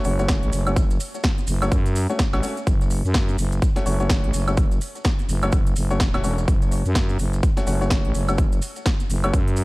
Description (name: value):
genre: bass house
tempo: 126 BPM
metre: 4/4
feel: swing 59% on 16ths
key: F# minor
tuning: A4 = 444 Hz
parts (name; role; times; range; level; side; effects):
- dark grand piano; stabs; 0.0-9.3 s; A3 to C#5; -28 LUFS; left 2 dB; sidechain pumping, digital delay
- maracas; percussion; 0.0-9.6 s; none; -38 LUFS; right 4 dB; none
- growling FM bass; bass; 0.1-9.6 s; E1 to F#2; -22 LUFS; equal; sidechain pumping
- big-room dance drum kit; drums; 0.1-9.6 s; hi-hat, snare drum, woodblock; -29 LUFS; equal; none
- electronic kick drum; drums; 0.3-9.4 s; none; -20 LUFS; equal; none
room: digital ambience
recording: dark, warm production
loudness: -19 LUFS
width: side -22 dB against mid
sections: 0.0-9.6 A section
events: none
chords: 0.0 F#m